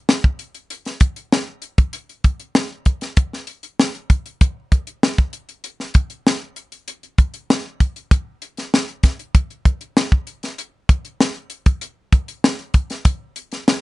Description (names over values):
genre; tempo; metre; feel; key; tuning
pop; 97 BPM; 4/4; straight; none; none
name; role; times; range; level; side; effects
tight funk drum kit; drums; 0.1-13.8 s; hi-hat, kick drum, snare drum; -15 LUFS; equal; none
room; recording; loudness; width
little or no reverb; nothing above 10.7 kHz; -17 LUFS; side -20 dB against mid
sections
0.0-13.8 A section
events
none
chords
none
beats
0.08 | 0.70 1.32 1.94 2.56 | 3.17 3.79 4.41 5.03 | 5.65 6.26 6.88 7.50 | 8.12 8.73 9.35 9.97 | 10.58 11.20 11.82 12.43 | 13.05 13.67